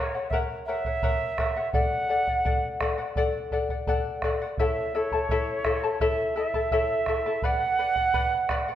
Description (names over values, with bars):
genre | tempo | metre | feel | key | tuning
andean folk, Andean ensemble | 84 BPM | 4/4 | straight | unclear | A4 = 439 Hz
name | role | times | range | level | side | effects
mellow quena | melody | 0.0-8.8 s | C#5 to F#5 | -27 LUFS | right 3 dB | none
charango | accompaniment | 0.0-8.8 s | E4 to A5 | -28 LUFS | left 4 dB | none
bombo | percussion | 0.3-8.7 s | none | -30 LUFS | right 1 dB | none
room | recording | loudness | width
wet recital hall reverb, RT60 1.5 s | none | -24 LUFS | side -11 dB against mid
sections
0.0-8.8 A section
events
none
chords
0.0 F#; 1.7 D; 4.6 A; 7.4 Bm